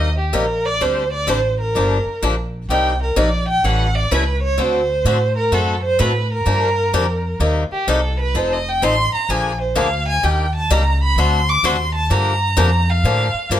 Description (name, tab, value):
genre	acoustic string swing (jazz manouche)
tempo	127 BPM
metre	4/4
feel	swing 65% on 8ths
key	G minor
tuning	A4 = 436 Hz
part	rich violin	melody	0.0-13.5 s	G4 to D6	-20 LUFS	right 1 dB	none
part	picked swing-style acoustic guitar	accompaniment	0.0-13.6 s	C3 to A4	-21 LUFS	left 3 dB	none
part	upright bass	bass	0.0-13.6 s	F1 to A2	-20 LUFS	equal	none
room	light reverb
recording	none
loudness	-15 LUFS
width	side -11 dB against mid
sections	0.0-13.6 A section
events	violin solo 0.0-13.6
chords	0.0 Cm7; 0.8 D7sus4; 1.7 Gm7; 2.7 Cm7; 3.6 A7; 4.6 D7; 6.5 Gm7; 7.4 Cm7; 8.3 F7; 9.3 Bb7; 10.2 Ebmaj7; 11.2 D7b9; 12.1 Gm7